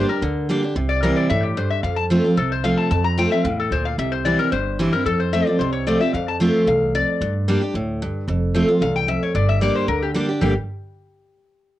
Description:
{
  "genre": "bluegrass",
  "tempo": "224 BPM",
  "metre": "4/4",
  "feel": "straight",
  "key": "G dorian",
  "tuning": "A4 = 440 Hz",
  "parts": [
    { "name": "lap resonator guitar", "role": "melody", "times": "0.0-10.5 s", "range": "G4 to Bb5", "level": "-23 LUFS", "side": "left 6 dB", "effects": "cassette tape" },
    { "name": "picked steel-string acoustic guitar", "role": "accompaniment", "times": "0.0-10.5 s", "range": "E2 to G4", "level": "-20 LUFS", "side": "right 1 dB", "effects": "cassette tape" },
    { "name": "upright bass", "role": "bass", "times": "0.0-10.5 s", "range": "F1 to G2", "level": "-24 LUFS", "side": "right 1 dB", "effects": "none" }
  ],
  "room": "moderate small room reverb, RT60 0.5 s",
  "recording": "home recording on cassette",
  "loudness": "-18 LUFS",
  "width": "side -14 dB against mid",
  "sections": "0.0-8.3 A section; 8.3-10.4 B section; 10.4-11.5 C section",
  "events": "none",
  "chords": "0.0 Gm; 0.8 C; 1.8 F; 4.0 C; 5.1 F; 7.2 G5; 8.3 F5; 9.3 Gm; 10.4 G5",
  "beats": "0.22 0.49 | 0.76 1.03 1.30 1.57 | 1.84 2.11 2.38 2.65 | 2.91 3.18 3.45 3.72 | 3.99 4.26 4.53 4.79 | 5.06 5.33 5.60 5.87 | 6.14 6.41 6.67 6.94 | 7.21 7.48 7.75 8.01 | 8.28 8.55 8.81 9.08 | 9.35 9.62 9.88 10.15 | 10.42"
}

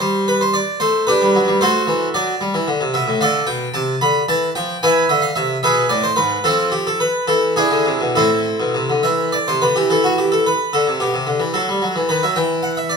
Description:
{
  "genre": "classical, baroque-style suite movement for harpsichord",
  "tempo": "74 BPM (dotted quarters)",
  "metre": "6/8",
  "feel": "rubato",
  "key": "A minor from 3.2 s, E minor from 9.9 s",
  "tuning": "A4 = 440 Hz",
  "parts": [
    { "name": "harpsichord", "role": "solo", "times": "0.0-13.0 s", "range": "G#2 to B5", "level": "-15 LUFS", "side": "equal", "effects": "none" }
  ],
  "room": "moderate large studio reverb, RT60 1.2 s",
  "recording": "minimal, uncompressed stereo recording",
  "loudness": "-15 LUFS",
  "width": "side -5 dB against mid",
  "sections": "0.0-9.9 A section; 9.9-13.0 A section",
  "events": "none",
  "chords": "0.0 G; 1.6 D9; 2.4 G; 3.2 Dm; 4.8 E; 6.5 F5; 7.3 E7; 8.2 Am; 9.9 Em; 11.5 D#dim; 12.4 N.C.",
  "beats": "| 0.01 0.81 | 1.61 2.41 | 3.21 4.01 | 4.82 5.64 | 6.45 7.29 | 8.15 9.03 | 9.90 10.73 | 11.54 12.36"
}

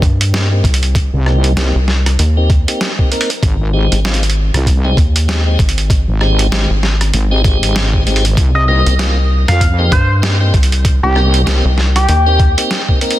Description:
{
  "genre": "glitch hop",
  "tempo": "97 BPM",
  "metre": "4/4",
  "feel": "swing 59% on 16ths",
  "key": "C minor",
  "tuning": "A4 = 440 Hz",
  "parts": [
    { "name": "tonewheel organ", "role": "stabs", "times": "0.0-13.2 s", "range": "Ab3 to Bb4", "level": "-20 LUFS", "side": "equal", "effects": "slow rotary speaker, sidechain pumping, low-pass filter, digital delay" },
    { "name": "rubbery square bass", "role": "bass", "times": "0.0-12.5 s", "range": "Ab1 to G2", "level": "-13 LUFS", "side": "equal", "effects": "none" },
    { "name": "boom bap sampler-style drum kit", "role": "drums", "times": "0.0-13.2 s", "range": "hi-hat, rim click, snare drum", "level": "-19 LUFS", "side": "right 1 dB", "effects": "none" },
    { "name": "electronic kick drum", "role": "drums", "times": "0.0-13.0 s", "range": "none", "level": "-13 LUFS", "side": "equal", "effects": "none" },
    { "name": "wobble bass", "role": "bass", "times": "1.1-11.6 s", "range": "Ab1 to F2", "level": "-13 LUFS", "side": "equal", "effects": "chorus" },
    { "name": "sync lead", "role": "melody", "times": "8.6-12.4 s", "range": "G4 to F5", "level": "-18 LUFS", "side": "left 1 dB", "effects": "chorus, digital delay" }
  ],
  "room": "little or no reverb",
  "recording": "dense, heavily limited modern master",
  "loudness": "-10 LUFS",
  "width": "side -14 dB against mid",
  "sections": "0.0-13.2 A section",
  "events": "filter sweep on tonewheel organ 0.0-13.2",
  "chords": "0.0 Cm7; 3.4 Abmaj7; 8.4 Cm7",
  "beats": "0.33 | 0.95 1.57 2.19 2.81 | 3.43 4.05 4.66 5.28 | 5.90 6.52 7.14 7.76 | 8.38 8.99 9.61 10.23 | 10.85 11.47 12.09 12.71"
}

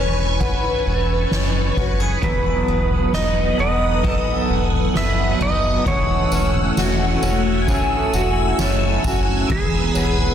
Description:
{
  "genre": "dream pop",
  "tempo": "66 BPM",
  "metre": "4/4",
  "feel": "straight",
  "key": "unclear",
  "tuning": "A4 = 440 Hz",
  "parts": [
    { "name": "clean lap steel guitar", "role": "melody", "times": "0.0-10.3 s", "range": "G#4 to E5", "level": "-25 LUFS", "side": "right 2 dB", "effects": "ping-pong delay" },
    { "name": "phased string machine", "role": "sustained chords", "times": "0.0-10.3 s", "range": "A3 to E6", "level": "-24 LUFS", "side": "left 1 dB", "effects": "ensemble chorus, phaser" },
    { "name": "picked twelve-string acoustic guitar", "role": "arpeggios", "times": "0.0-10.3 s", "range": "E3 to B4", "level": "-24 LUFS", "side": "left 2 dB", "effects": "lush chorus, ping-pong delay" },
    { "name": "round analog bass", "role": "bass", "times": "0.0-10.3 s", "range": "E1 to F#1", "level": "-22 LUFS", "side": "equal", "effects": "none" },
    { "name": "soft-mallet drum kit", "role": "drums", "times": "0.4-10.3 s", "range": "kick drum, snare drum, tambourine, toms", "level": "-24 LUFS", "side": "equal", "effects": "none" },
    { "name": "worn celesta", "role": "texture", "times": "0.4-10.3 s", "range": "C#5 to G#5", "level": "-36 LUFS", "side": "left 2 dB", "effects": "ping-pong delay" },
    { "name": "electric guitar through a small old amp", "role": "accompaniment", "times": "2.2-10.3 s", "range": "E3 to A4", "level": "-26 LUFS", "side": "right 4 dB", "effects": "tremolo, wide subtle chorus" }
  ],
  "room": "light reverb, small room ambience",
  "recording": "dense, heavily limited modern master",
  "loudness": "-16 LUFS",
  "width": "side -9 dB against mid",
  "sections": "0.0-10.3 A section",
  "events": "none",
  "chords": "0.0 Amaj9/E; 2.2 B7/E; 9.5 Emaj7",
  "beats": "0.41 1.31 | 2.23 3.13 4.04 4.95 | 5.86 6.77 7.68 8.59 | 9.50"
}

